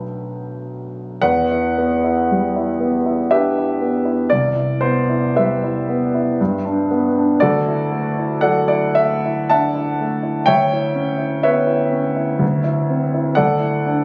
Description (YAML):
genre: classical, impressionist solo piano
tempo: 50-62 BPM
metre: 3/4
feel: rubato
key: E minor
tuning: A4 = 441 Hz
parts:
  - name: warm grand piano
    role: solo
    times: 0.0-14.0 s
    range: B1 to A5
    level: -18 LUFS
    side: equal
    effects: none
room: moderate recital hall reverb, RT60 1.7 s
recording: recorded on a phone in the room, club reverb, compression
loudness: -18 LUFS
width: mono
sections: 0.0-1.2 A section; 1.2-14.0 B section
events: none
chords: 0.0 Bm7; 1.2 Emadd9; 4.3 Cmaj7; 6.4 G; 7.4 Dadd9; 10.5 Em6/D; 12.4 Cmaj7/D; 13.4 Dadd9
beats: 0.06 | 1.22 2.28 3.29 | 4.30 5.35 6.40 | 7.40 8.41 9.48 | 10.46 11.43 12.42 | 13.39